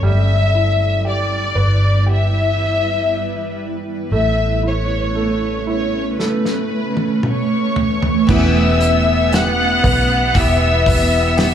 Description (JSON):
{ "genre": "pop ballad", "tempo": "58 BPM", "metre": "4/4", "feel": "straight", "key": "unclear", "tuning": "A4 = 439 Hz", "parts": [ { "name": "warm studio violin section", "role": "melody", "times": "0.0-11.5 s", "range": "B4 to F#6", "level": "-19 LUFS", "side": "left 3 dB", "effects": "slapback echo" }, { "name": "warm grand piano", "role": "accompaniment", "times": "0.0-11.5 s", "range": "E3 to B4", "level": "-24 LUFS", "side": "right 4 dB", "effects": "slapback echo" }, { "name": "granular cloud pad", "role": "sustained chords", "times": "0.0-11.5 s", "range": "G3 to B5", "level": "-23 LUFS", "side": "right 2 dB", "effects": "built-in reverb" }, { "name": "vintage muted fingered electric bass", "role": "bass", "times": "0.0-11.5 s", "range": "E1 to B1", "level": "-18 LUFS", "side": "equal", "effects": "none" }, { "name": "loose indie drum kit", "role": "drums", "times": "6.2-11.5 s", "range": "crash cymbal, hi-hat, kick drum, snare drum, toms", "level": "-20 LUFS", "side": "equal", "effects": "none" }, { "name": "rich studio cello section", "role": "second line", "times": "8.3-11.5 s", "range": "B3", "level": "-22 LUFS", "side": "equal", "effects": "slapback echo" }, { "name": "picked steel-string acoustic guitar", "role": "arpeggios", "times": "8.3-11.5 s", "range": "E3 to G4", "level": "-22 LUFS", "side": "left 3 dB", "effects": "slapback echo" } ], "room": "moderate club reverb, RT60 0.8 s", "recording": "live gig heard through the venue's PA, club ambience", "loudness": "-14 LUFS", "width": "side -9 dB against mid", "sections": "0.0-8.3 A section; 8.3-11.5 B section", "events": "drum fill 6.2-8.3", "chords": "0.0 Em/G; 4.1 Aadd9; 8.3 Em" }